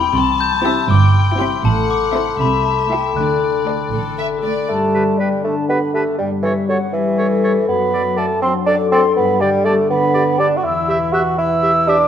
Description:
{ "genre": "cinematic, playful, whimsical film cue", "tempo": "80 BPM (dotted quarters)", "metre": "6/8", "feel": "straight", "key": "G major", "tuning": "A4 = 441 Hz", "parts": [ { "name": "glockenspiel with soft plastic mallets", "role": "melody", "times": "0.0-4.4 s", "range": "G5 to G6", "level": "-20 LUFS", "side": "left 7 dB", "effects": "none" }, { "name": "warm chamber violin section", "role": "melody", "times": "0.0-4.3 s", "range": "D5 to A5", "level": "-25 LUFS", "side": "left 6 dB", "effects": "none" }, { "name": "warm chamber violin section", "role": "second line", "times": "0.0-4.7 s", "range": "G4 to E5", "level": "-27 LUFS", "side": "left 2 dB", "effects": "none" }, { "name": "warm chamber viola section", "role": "accompaniment", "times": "0.0-4.6 s", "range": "A3 to A4", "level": "-26 LUFS", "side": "right 2 dB", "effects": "none" }, { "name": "concert harp", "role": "arpeggios", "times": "0.0-12.1 s", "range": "E2 to D5", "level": "-22 LUFS", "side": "left 6 dB", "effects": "none" }, { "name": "dark chamber cello section", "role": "bass", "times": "0.1-4.5 s", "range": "G2 to D3", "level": "-20 LUFS", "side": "right 2 dB", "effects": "none" }, { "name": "dark chamber double bass section", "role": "bass", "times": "0.2-4.5 s", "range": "G1 to D2", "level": "-21 LUFS", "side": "right 3 dB", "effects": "none" }, { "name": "mellow concert flute", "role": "second line", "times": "4.7-12.1 s", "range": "E5 to F#6", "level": "-22 LUFS", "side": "equal", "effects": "none" }, { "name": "warm bassoon", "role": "accompaniment", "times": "4.7-12.1 s", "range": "E3 to F#4", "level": "-17 LUFS", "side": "right 3 dB", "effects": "none" }, { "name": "dark French horn section", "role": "sustained chords", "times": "4.7-12.1 s", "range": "D3 to G3", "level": "-21 LUFS", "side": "left 3 dB", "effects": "none" }, { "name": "clear oboe", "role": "second line", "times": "4.9-12.0 s", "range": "B4 to E5", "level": "-26 LUFS", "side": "right 3 dB", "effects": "none" }, { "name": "mellow clarinet", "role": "second line", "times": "4.9-12.0 s", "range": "G4 to A4", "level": "-26 LUFS", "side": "equal", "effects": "none" } ], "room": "moderate scoring stage reverb, RT60 1.6 s", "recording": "none", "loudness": "-14 LUFS", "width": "side -9 dB against mid", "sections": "0.0-4.7 A section; 4.7-12.1 B section", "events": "none", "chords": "0.1 C; 1.6 Am; 2.4 Am/C; 3.2 D; 4.7 G; 6.2 A7/G; 7.7 D7/F#; 9.2 G; 10.6 Em" }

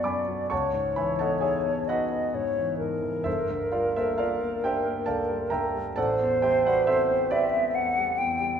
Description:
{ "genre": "classical, impressionist duo for flute and grand piano", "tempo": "42-46 BPM (dotted quarters)", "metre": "6/8", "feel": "rubato", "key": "unclear", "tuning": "A4 = 440 Hz", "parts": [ { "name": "hollow concert flute", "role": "melody", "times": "0.0-8.6 s", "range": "A#4 to G5", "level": "-26 LUFS", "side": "equal", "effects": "none" }, { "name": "warm concert grand piano", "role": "accompaniment", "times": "0.0-8.6 s", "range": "G1 to D6", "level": "-27 LUFS", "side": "right 1 dB", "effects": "none" } ], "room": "wet recital hall reverb, RT60 1.5 s", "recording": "minimal, uncompressed stereo recording", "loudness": "-23 LUFS", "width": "side -8 dB against mid", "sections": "0.0-8.6 A section", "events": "none", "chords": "0.0 Bm6; 0.5 C#m11; 3.3 Gm6; 6.0 Am11" }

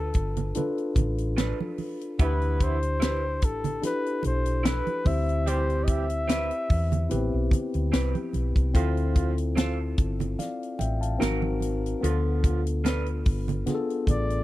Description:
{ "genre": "lush 1970s-style soul", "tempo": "73 BPM", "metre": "4/4", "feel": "swing 54% on 16ths", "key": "unclear", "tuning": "A4 = 440 Hz", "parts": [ { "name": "breathy flugelhorn", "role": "melody", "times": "0.0-7.5, 14.1-14.4 s", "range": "A4 to E5", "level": "-30 LUFS", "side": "left 2 dB", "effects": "none" }, { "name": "mellow tine electric piano", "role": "accompaniment", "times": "0.0-14.4 s", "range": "B3 to A5", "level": "-31 LUFS", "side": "left 3 dB", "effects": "none" }, { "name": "hollow-body short-scale fingered electric bass", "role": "bass", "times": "0.0-14.4 s", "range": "G1 to E2", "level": "-27 LUFS", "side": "equal", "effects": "none" }, { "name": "tight funk drum kit", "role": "drums", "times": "0.1-14.4 s", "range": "hi-hat, kick drum, snare drum", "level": "-24 LUFS", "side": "equal", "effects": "none" }, { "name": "congas", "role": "percussion", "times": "0.4-14.3 s", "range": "none", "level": "-33 LUFS", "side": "right 5 dB", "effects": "none" }, { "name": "electric guitar through a small old amp", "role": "riff", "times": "1.4-13.1 s", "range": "C4 to B4", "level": "-37 LUFS", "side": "right 5 dB", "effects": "spring reverb" }, { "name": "mellow horn section", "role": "stabs", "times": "2.2-12.6 s", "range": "C3 to G4", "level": "-33 LUFS", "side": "right 8 dB", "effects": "none" } ], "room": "little or no reverb", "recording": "dry, close 1970s-style studio recording", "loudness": "-24 LUFS", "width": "side -16 dB against mid", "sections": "0.0-14.4 A section", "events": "none", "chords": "0.0 G9; 2.2 Am9; 8.7 Dm7; 11.2 G#9; 12.0 G9" }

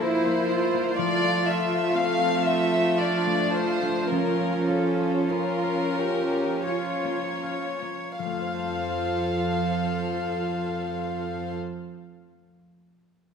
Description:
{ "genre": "classical", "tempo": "38-64 BPM", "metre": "3/4", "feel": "rubato", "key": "F major", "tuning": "A4 = 440 Hz", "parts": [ { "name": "warm chamber violin section", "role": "melody", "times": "0.0-11.5 s", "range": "A4 to F5", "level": "-28 LUFS", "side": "left 4 dB", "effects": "none" }, { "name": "warm chamber violin section", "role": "second line", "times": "0.0-11.6 s", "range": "A3 to C5", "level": "-30 LUFS", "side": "left 1 dB", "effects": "none" }, { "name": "dark chamber viola section", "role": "accompaniment", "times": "0.0-11.5 s", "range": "F3 to F4", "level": "-30 LUFS", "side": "right 4 dB", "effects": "none" }, { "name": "concert harp", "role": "arpeggios", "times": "0.0-12.0 s", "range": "F3 to F5", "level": "-33 LUFS", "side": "left 6 dB", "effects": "none" }, { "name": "dark chamber cello section", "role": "bass", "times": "0.0-11.6 s", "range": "F2 to G4", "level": "-31 LUFS", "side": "right 6 dB", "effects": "none" } ], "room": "moderate concert hall reverb, RT60 2.1 s", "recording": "none", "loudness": "-23 LUFS", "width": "side -6 dB against mid", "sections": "0.0-8.2 A section; 8.2-12.5 B section", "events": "slowing down 0.0-8.2", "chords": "0.0 C7/F; 1.0 F; 4.1 Bbm/F; 8.2 F" }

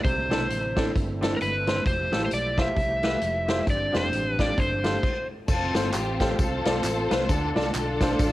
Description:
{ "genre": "uptempo gospel", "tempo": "132 BPM", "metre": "4/4", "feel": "swing 60% on 8ths", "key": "unclear", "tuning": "A4 = 440 Hz", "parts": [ { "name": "overdriven slide guitar", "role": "melody", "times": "0.0-5.3 s", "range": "Bb4 to E5", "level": "-27 LUFS", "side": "equal", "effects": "cassette tape" }, { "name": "clear baby grand piano", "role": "accompaniment", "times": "0.0-8.2 s", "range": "G2 to D5", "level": "-30 LUFS", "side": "equal", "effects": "cassette tape" }, { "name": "bright tonewheel organ", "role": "sustained chords", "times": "0.0-8.3 s", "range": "D3 to A5", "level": "-36 LUFS", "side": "right 2 dB", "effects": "fast rotary speaker, chorus vibrato, cassette tape" }, { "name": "fingered electric bass", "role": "bass", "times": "0.0-8.3 s", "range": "F1 to D2", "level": "-32 LUFS", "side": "equal", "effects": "tube saturation" }, { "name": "swinging big-band drum kit", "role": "drums", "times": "0.0-8.3 s", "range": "crash cymbal, hi-hat, kick drum, snare drum", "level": "-27 LUFS", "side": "equal", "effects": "cassette tape" }, { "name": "dark studio string section", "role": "melody", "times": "5.5-8.3 s", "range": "C4 to C5", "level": "-27 LUFS", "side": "left 1 dB", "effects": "cassette tape" }, { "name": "tambourine and handclaps", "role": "percussion", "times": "5.5-8.3 s", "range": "none", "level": "-37 LUFS", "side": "right 1 dB", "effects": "none" } ], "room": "light reverb, small room ambience", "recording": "home recording on cassette", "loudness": "-22 LUFS", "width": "side -16 dB against mid", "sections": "0.0-5.5 A section; 5.5-8.3 B section", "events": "stop 5.0-5.5", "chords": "0.0 C69; 1.9 Fmaj9; 3.7 G7sus4; 4.6 G9sus4; 5.5 F; 7.3 Dm" }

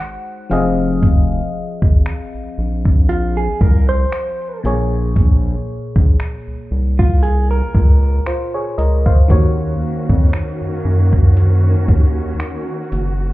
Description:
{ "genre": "contemporary R&B", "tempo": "58 BPM", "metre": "4/4", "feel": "swing 54% on 16ths", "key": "Eb dorian", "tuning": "A4 = 442 Hz", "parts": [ { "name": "FM electric piano", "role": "accompaniment", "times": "0.0-13.3 s", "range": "Bb2 to Gb5", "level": "-22 LUFS", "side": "left 2 dB", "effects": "chorus" }, { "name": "dusty soul sampler-style drum kit", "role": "drums", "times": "0.0-13.2 s", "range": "finger snaps, hi-hat, kick drum", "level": "-13 LUFS", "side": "equal", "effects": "none" }, { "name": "round analog bass", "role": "bass", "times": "0.5-13.3 s", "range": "F1 to Gb2", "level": "-15 LUFS", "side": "equal", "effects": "none" }, { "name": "direct-recorded clean electric guitar", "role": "arpeggios", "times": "3.1-9.0 s", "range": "F4 to C5", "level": "-23 LUFS", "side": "right 2 dB", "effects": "tape echo" }, { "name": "warm studio string section", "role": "sustained chords", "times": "9.3-13.3 s", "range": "Eb3 to Gb4", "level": "-24 LUFS", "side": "right 1 dB", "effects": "stereo widening, sidechain pumping" } ], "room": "little or no reverb", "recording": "heard muffled through a wall, club reverb, EQ", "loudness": "-13 LUFS", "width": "side -17 dB against mid", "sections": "0.0-13.3 A section", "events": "FM electric piano fill 0.0-1.0", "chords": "0.0 Ab7; 0.5 Fm7; 4.6 Bbm7; 9.3 Ebm7" }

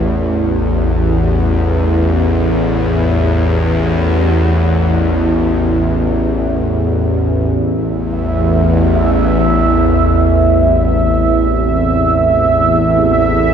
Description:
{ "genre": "dark ambient drone", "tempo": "free time", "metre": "none", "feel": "none", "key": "unclear", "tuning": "A4 = 438 Hz", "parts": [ { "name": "bowed-like drone", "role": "drone", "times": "0.0-13.5 s", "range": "A1 to E2", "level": "-12 LUFS", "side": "equal", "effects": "built-in reverb" }, { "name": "deep dark ambient pad", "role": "sustained chords", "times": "11.2-13.5 s", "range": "C4 to E5", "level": "-24 LUFS", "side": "right 3 dB", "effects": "none" }, { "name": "bubbling stepped-filter texture", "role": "texture", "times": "8.1-13.5 s", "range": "E5", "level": "-16 LUFS", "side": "right 3 dB", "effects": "chorus, built-in reverb" } ], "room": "wet plate reverb, RT60 2.9 s", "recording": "dreamy mix soaked in reverb", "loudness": "-11 LUFS", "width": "side -8 dB against mid", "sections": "0.0-7.6 A section; 7.6-13.5 B section", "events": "none", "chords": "0.0 A5; 7.6 Am" }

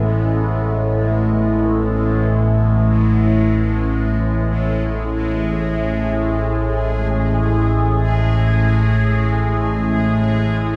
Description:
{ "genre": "dark ambient drone", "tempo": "free time", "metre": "none", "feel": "none", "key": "unclear", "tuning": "A4 = 436 Hz", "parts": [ { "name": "organ-like drone", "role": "drone", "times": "0.0-10.8 s", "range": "A1 to A2", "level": "-18 LUFS", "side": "equal", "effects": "ensemble chorus, built-in reverb, phaser" }, { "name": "bubbling stepped-filter texture", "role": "texture", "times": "0.0-10.8 s", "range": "G#3 to G#4", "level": "-29 LUFS", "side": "equal", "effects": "chorus, built-in reverb, shimmer reverb" } ], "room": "wet plate reverb, RT60 3.4 s", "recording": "dreamy mix soaked in reverb, cassette tape", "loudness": "-18 LUFS", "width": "mono", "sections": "0.0-10.8 A section", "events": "none", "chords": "0.0 Asus2" }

